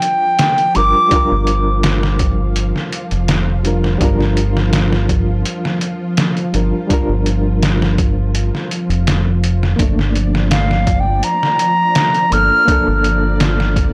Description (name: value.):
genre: trip hop.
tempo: 83 BPM.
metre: 4/4.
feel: straight.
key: G minor.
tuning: A4 = 441 Hz.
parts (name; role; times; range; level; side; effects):
bright reedy wooden flute; melody; 0.0-1.5, 10.5-13.0 s; F5 to F6; -17 LUFS; equal; vintage 12-bit sampler grit, tape echo.
overdriven reed electric piano; accompaniment; 0.0-13.9 s; G3 to Bb4; -25 LUFS; equal; fast tremolo, vintage 12-bit sampler grit, tape echo.
string machine, cellos; sustained chords; 0.0-13.9 s; F3 to D5; -25 LUFS; equal; ensemble chorus.
trip hop sampler-style drum kit; drums; 0.0-13.9 s; hi-hat, kick drum, snare drum; -20 LUFS; equal; overdrive.
deep dub fingered electric bass; bass; 0.8-13.9 s; F1 to G1; -19 LUFS; equal; transformer saturation.
room: little or no reverb.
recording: dry, gritty hardware recording.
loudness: -15 LUFS.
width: mono.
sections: 0.0-13.9 A section.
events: none.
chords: 0.0 Gm7; 9.8 Bbmaj7/G.